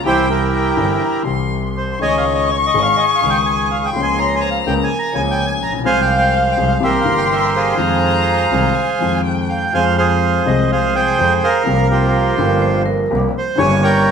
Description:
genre	tango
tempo	125 BPM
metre	4/4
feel	rubato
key	F minor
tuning	A4 = 440 Hz
part	warm violin	second line	0.0-9.7 s	F5 to Db6	-20 LUFS	left 5 dB	none
part	dark concert grand piano	accompaniment	0.0-14.1 s	G1 to Ab4	-21 LUFS	left 5 dB	none
part	clear double bass	bass	0.0-14.1 s	G1 to F2	-21 LUFS	right 1 dB	none
part	bandoneon	melody	0.1-14.1 s	E4 to Bb5	-17 LUFS	right 3 dB	none
part	vibraphone with medium hard mallets	second line	4.2-5.5, 12.4-13.2 s	Bb4 to Db5	-23 LUFS	right 3 dB	none
room	moderate large studio reverb, RT60 1.3 s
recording	none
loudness	-13 LUFS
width	side -6 dB against mid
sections	0.0-9.7 A section; 9.7-14.1 B section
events	none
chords	0.1 C; 2.0 Dbsus2; 3.9 Bbm7/Db; 5.9 Fm/C; 6.8 C7; 7.8 Fm7; 9.7 Fm; 11.7 C7sus4; 13.6 Gdim

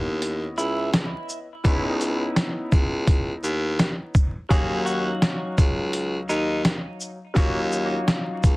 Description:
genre	hip hop, boom-bap hip-hop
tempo	84 BPM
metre	4/4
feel	swing 59% on 16ths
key	Eb phrygian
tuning	A4 = 440 Hz
part	semi-hollow electric guitar	melody	0.0-6.6 s	Eb4 to Ab4	-30 LUFS	equal	high-pass filter, low-pass filter, plate reverb, digital delay
part	dark baby grand piano	accompaniment	0.0-8.6 s	Gb3 to F5	-30 LUFS	left 1 dB	high-pass filter, low-pass filter, plate reverb
part	bright baritone saxophone	bass	0.0-8.6 s	Db2 to Eb2	-26 LUFS	equal	none
part	trip hop sampler-style drum kit	drums	0.2-8.6 s	hi-hat, kick drum, shaker, snare drum	-20 LUFS	equal	none
part	dark trumpet section	stabs	1.7-7.6 s	Ab3 to Db5	-36 LUFS	right 1 dB	high-pass filter, low-pass filter, plate reverb, digital delay
room	light reverb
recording	dense, heavily limited modern master, vinyl crackle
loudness	-21 LUFS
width	side -22 dB against mid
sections	0.0-8.6 A section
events	none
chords	0.0 Dbm9; 4.5 Ebm9

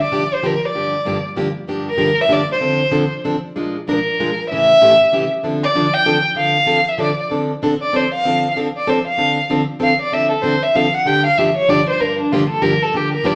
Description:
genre	jazz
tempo	192 BPM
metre	3/4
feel	swing 61% on 8ths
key	D minor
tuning	A4 = 440 Hz
part	warm violin	melody	0.0-13.3 s	D4 to G5	-18 LUFS	equal	none
part	picked plugged-in steel-string acoustic guitar	accompaniment	0.1-13.3 s	G2 to Bb4	-22 LUFS	equal	none
room	wet large studio reverb, RT60 0.9 s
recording	none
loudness	-17 LUFS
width	mono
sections	0.0-7.3 A section; 7.3-13.3 B section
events	violin solo 7.3-13.3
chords	0.0 Gm7; 2.6 Dm7; 3.6 Bb7; 4.5 A7; 5.4 Dm7; 11.1 Gm7

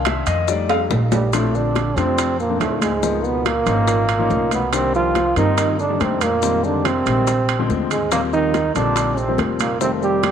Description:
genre	Afro-Cuban jazz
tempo	142 BPM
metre	4/4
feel	straight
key	Bb major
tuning	A4 = 439 Hz
part	warm concert grand piano	accompaniment	0.0-10.3 s	D3 to F5	-23 LUFS	left 8 dB	none
part	upright bass	bass	0.0-10.3 s	F1 to G2	-24 LUFS	right 1 dB	none
part	bongos	percussion	0.1-10.3 s	none	-29 LUFS	left 11 dB	none
part	congas	percussion	0.1-10.3 s	none	-29 LUFS	equal	none
part	maracas	percussion	0.1-10.3 s	none	-35 LUFS	left 11 dB	none
part	timbales	percussion	0.1-10.3 s	none	-26 LUFS	right 11 dB	none
part	clear trombone	melody	1.1-10.3 s	G3 to G4	-20 LUFS	right 2 dB	none
part	mellow trombone	second line	1.1-10.3 s	G2 to G3	-25 LUFS	right 7 dB	none
room	wet plate reverb, RT60 3.7 s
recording	1960s-style stereo with parts hard left and right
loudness	-16 LUFS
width	side -8 dB against mid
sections	0.0-1.3 A section; 1.3-10.3 B section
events	grand piano solo 0.0-1.3; drum fill 0.7-1.3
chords	0.5 F7; 1.3 Bbmaj9; 3.0 Db13; 4.7 Cm9; 6.4 Fm7; 7.3 Bb7; 8.1 Eb6; 9.8 F9

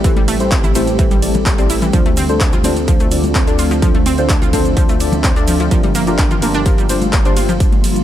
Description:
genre	progressive house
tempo	127 BPM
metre	4/4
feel	straight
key	G dorian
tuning	A4 = 440 Hz
part	shimmering ambient pad	sustained chords	0.0-8.0 s	D3 to E5	-20 LUFS	equal	chorus, built-in reverb, sidechain pumping
part	analog pluck	arpeggios	0.0-7.5 s	E3 to F4	-22 LUFS	right 1 dB	chorus, sidechain pumping, digital delay
part	deep mellow chord stab	stabs	0.0-7.6 s	D4 to D5	-20 LUFS	left 2 dB	chorus, sidechain pumping, digital delay
part	dark detuned saw bass	bass	0.0-8.0 s	G1 to D2	-20 LUFS	equal	sidechain pumping
part	big-room dance drum kit	drums	0.0-8.0 s	handclaps, hi-hat, ride cymbal	-23 LUFS	equal	none
part	electronic kick drum	drums	0.0-7.7 s	none	-14 LUFS	equal	none
part	egg shaker	percussion	0.0-8.0 s	none	-30 LUFS	right 4 dB	none
part	congas	percussion	0.2-7.8 s	none	-24 LUFS	left 3 dB	sidechain pumping on perc
room	little or no reverb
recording	dark, warm production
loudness	-12 LUFS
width	side -12 dB against mid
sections	0.0-8.0 A section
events	none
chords	0.0 Am7; 1.9 Dm7; 5.7 Gm7

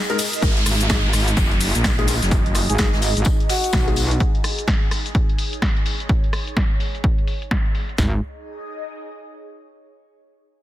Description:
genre	bass house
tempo	127 BPM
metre	4/4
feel	swing 61% on 16ths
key	unclear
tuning	A4 = 440 Hz
part	airy breathy pad	texture	0.0-9.8 s	D#4 to D#5	-33 LUFS	right 3 dB	chorus, phaser, sidechain pumping
part	dark grand piano	stabs	0.1-3.9 s	G#3 to A#4	-29 LUFS	left 4 dB	sidechain pumping, digital delay
part	house drum kit	drums	0.1-8.0 s	hi-hat, ride cymbal, rim click, shaker, snare drum	-25 LUFS	left 1 dB	low-pass filter on hats, low-pass filter on perc, low-pass filter on snare, low-pass filter on cymbals
part	jazz brush drum kit	drums	0.2-4.1 s	hi-hat, snare drum, tambourine	-31 LUFS	left 3 dB	sidechain pumping on hats, high-pass filter on hats, soft clipping on snare, high-pass filter on snare, sidechain pumping on perc, high-pass filter on perc, high-pass filter on room
part	metallic wobble bass	bass	0.4-4.2, 8.0-8.2 s	F#1 to B1	-21 LUFS	equal	chorus, tube saturation, sidechain pumping
part	house drum kit	drums	0.4-8.1 s	kick drum, snare drum, toms	-20 LUFS	equal	none
part	downlifter	sound effects	0.4-4.2 s	none	-27 LUFS	equal	none
part	breathy flute-like synth lead	melody	2.7-4.2 s	F#4 to G#4	-27 LUFS	equal	chorus, digital delay
room	little or no reverb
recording	dense, heavily limited modern master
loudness	-17 LUFS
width	side -14 dB against mid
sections	0.4-8.0 A section; 8.0-9.9 B section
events	break 0.0-0.4; fade-out on analog synth pad 0.4-8.0; filter sweep on drum 0.4-8.0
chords	0.4 G#5

